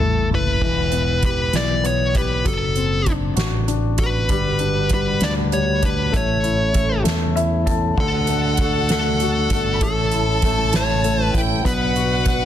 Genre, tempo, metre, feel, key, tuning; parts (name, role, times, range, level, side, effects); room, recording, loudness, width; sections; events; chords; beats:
six-eight pop ballad; 65 BPM (dotted quarters); 6/8; straight; D major; A4 = 441 Hz
dark smooth lead guitar; melody; 0.0-12.4 s; A4 to D5; -22 LUFS; equal; overdrive
warm grand piano; accompaniment; 0.0-12.4 s; D3 to A5; -25 LUFS; left 7 dB
fingered electric bass; bass; 0.0-12.4 s; E1 to E2; -22 LUFS; right 1 dB
soft-mallet drum kit; drums; 0.0-12.4 s; crash cymbal, hi-hat, kick drum, snare drum, toms; -23 LUFS; right 1 dB
tonewheel organ; sustained chords; 4.3-12.4 s; D3 to B4; -28 LUFS; right 1 dB; overdrive, slow rotary speaker
warm symphonic violin section; second line; 8.0-12.4 s; F#5 to B5; -25 LUFS; right 1 dB
light reverb, small room ambience; dense, heavily limited modern master, faint mains hum; -17 LUFS; side -10 dB against mid
0.6-8.0 A section; 8.0-12.4 B section
drum fill 0.0-0.6; grand piano fill 7.1-8.0
0.0 A5; 0.6 Em; 2.5 D7/F#; 4.3 Gmaj7; 6.1 A; 8.0 D; 9.8 A; 11.6 Bm
| 0.62 1.54 | 2.46 3.38 | 4.30 5.22 | 6.14 7.06 | 7.97 8.89 | 9.81 10.73 | 11.65